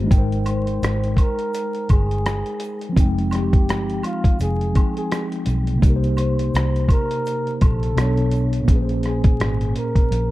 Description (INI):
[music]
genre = lo-fi hip hop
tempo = 84 BPM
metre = 4/4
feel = swing 56% on 16ths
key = Ab major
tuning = A4 = 440 Hz
[part]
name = mellow tine electric piano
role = accompaniment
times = 0.0-10.3 s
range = Bb2 to G5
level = -24 LUFS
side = left 1 dB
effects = medium stereo tremolo, low-pass filter
[part]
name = vintage muted fingered electric bass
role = bass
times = 0.0-10.3 s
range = F1 to C2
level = -22 LUFS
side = equal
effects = none
[part]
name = dusty soul sampler-style drum kit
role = drums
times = 0.1-10.3 s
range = hi-hat, kick drum, rim click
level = -18 LUFS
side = equal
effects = none
[part]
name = tube shaker and woodblock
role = percussion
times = 0.1-8.5 s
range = none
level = -38 LUFS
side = right 1 dB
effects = none
[part]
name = breathy flugelhorn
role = melody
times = 0.5-10.3 s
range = F4 to C5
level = -28 LUFS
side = equal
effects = low-pass filter
[sound]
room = little or no reverb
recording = dark, warm production, vinyl crackle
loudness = -17 LUFS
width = side -17 dB against mid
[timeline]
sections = 0.0-10.3 A section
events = none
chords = 0.1 Abmaj9; 3.0 Fm9; 5.8 Cm7; 8.0 Bm9; 8.7 Bbm9